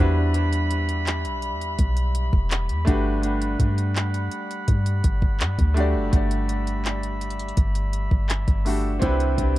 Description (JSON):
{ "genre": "contemporary R&B", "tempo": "83 BPM", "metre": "4/4", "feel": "straight", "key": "unclear", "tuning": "A4 = 439 Hz", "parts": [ { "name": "bright baby grand piano", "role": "accompaniment", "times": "0.0-9.6 s", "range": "G3 to D5", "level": "-28 LUFS", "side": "equal", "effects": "tape echo" }, { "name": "warm brass ensemble", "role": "sustained chords", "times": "0.0-9.6 s", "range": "G3 to B5", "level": "-32 LUFS", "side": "equal", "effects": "sidechain pumping" }, { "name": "soft 808-style bass", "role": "bass", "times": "0.0-9.6 s", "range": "E1 to G2", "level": "-23 LUFS", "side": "equal", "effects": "none" }, { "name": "smooth R&B drum kit", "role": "drums", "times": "0.3-9.6 s", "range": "handclaps, hi-hat, kick drum", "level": "-23 LUFS", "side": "equal", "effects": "none" }, { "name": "flamenco guitar", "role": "arpeggios", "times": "9.0-9.6 s", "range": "C3", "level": "-28 LUFS", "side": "right 5 dB", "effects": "tape echo" } ], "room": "little or no reverb", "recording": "echo-heavy mix", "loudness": "-20 LUFS", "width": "side -16 dB against mid", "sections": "0.0-9.6 A section", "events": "none", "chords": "0.0 Em7; 2.9 Gmaj7; 9.0 Cmaj9" }